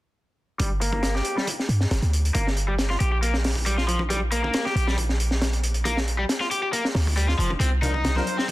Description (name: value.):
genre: breakbeat, breaks.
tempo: 137 BPM.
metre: 4/4.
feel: straight.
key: G minor.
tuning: A4 = 440 Hz.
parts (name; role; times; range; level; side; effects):
overdriven electric guitar; riff; 0.6-8.4 s; F3 to C5; -27 LUFS; left 1 dB; low-pass filter, dub echo.
warm 808-style bass; bass; 0.6-8.2 s; F1 to G2; -23 LUFS; equal; none.
crunchy breakbeat drum kit; drums; 0.6-8.5 s; hi-hat, kick drum, snare drum; -27 LUFS; equal; high-pass filter on kick, high-pass filter on hats, high-pass filter on snare, high-pass filter on room.
warm brass ensemble; stabs; 7.8-8.2 s; F3 to Bb4; -30 LUFS; left 2 dB; dub echo.
congas; percussion; 7.8-8.2 s; none; -32 LUFS; left 3 dB; none.
room: light reverb, studio reverb.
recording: dense, heavily limited modern master.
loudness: -21 LUFS.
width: side -17 dB against mid.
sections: 0.6-8.5 A section.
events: filter sweep on overdriven electric guitar 0.6-8.5.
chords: 0.6 Gm; 7.6 Cm11.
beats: | 0.60 1.04 1.47 1.91 | 2.35 2.79 3.23 3.66 | 4.10 4.54 4.98 5.42 | 5.85 6.29 6.73 7.17 | 7.61 8.04 8.48.